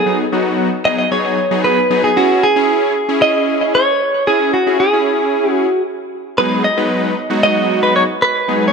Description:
pop; 114 BPM; 4/4; straight; C# minor; A4 = 442 Hz
direct-recorded clean electric guitar; melody; 0.0-8.7 s; F#4 to D#5; -14 LUFS; right 2 dB; lush chorus, digital delay
big bright polysynth; accompaniment; 0.1-8.7 s; F#3 to B4; -17 LUFS; left 2 dB
moderate lush hall reverb, RT60 2.7 s; dark, warm production; -12 LUFS; side -5 dB against mid
0.0-2.2 A section; 2.2-8.7 B section
build-up 0.0-2.2; drop 2.2-8.7
0.0 G#m7; 2.2 C#m; 6.4 G#m7

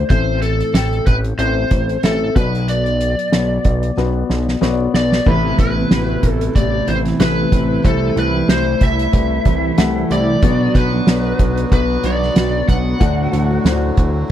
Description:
piano-driven pop; 93 BPM; 4/4; swing 56% on 16ths; A4 = 439 Hz
lead guitar through a small cranked amp; melody; 0.0-14.3 s; A4 to F#5; -21 LUFS; equal; overdrive
felt-muted upright piano; accompaniment; 0.0-14.3 s; A2 to G5; -21 LUFS; left 9 dB
fat analog bass; bass; 0.0-14.2 s; A1 to D2; -19 LUFS; right 1 dB
soft-mallet drum kit; drums; 0.1-14.1 s; crash cymbal, hi-hat, kick drum, snare drum; -17 LUFS; right 1 dB
accordion; sustained chords; 5.3-14.3 s; C3 to F#4; -31 LUFS; right 3 dB
fingerpicked steel-string acoustic guitar; riff; 5.3-14.3 s; A2 to G4; -22 LUFS; right 6 dB
little or no reverb; dry, close 1970s-style studio recording; -14 LUFS; side -11 dB against mid
0.0-5.3 A section; 5.3-14.3 B section
drum fill 4.0-5.3
0.1 Am; 2.4 Bm; 5.3 Amadd9; 7.8 C6; 10.4 Bm; 13.0 D

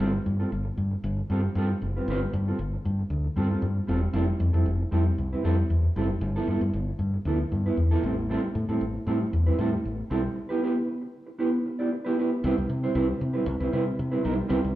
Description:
disco; 116 BPM; 4/4; straight; A4 = 439 Hz
mellow electric guitar; accompaniment; 0.0-14.7 s; F3 to D5; -27 LUFS; right 2 dB
fingered electric bass; bass; 0.0-14.7 s; E1 to C3; -26 LUFS; left 1 dB
wet large studio reverb, RT60 1.3 s; band playing live in one room; -24 LUFS; side -14 dB against mid
0.0-4.1 A section; 4.1-12.4 B section; 12.4-14.8 C section
0.0 G9sus4; 4.1 Fmaj9; 6.2 G13; 8.0 Am7; 10.4 G6/B; 12.4 Cmaj7

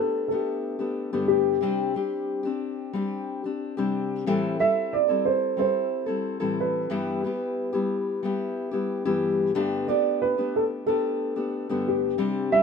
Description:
pop; 91 BPM; 4/4; straight; G major; A4 = 442 Hz
dark upright piano; melody; 0.0-12.6 s; G4 to E5; -25 LUFS; right 2 dB
fingerpicked steel-string acoustic guitar; accompaniment; 0.0-12.6 s; G2 to A4; -26 LUFS; left 3 dB
moderate studio reverb, RT60 0.7 s; minimal, uncompressed stereo recording; -24 LUFS; side -5 dB against mid
0.0-12.6 A section
0.0 Gadd9; 1.6 Csus2; 4.3 Am7; 6.9 Em/G; 9.6 Gadd9

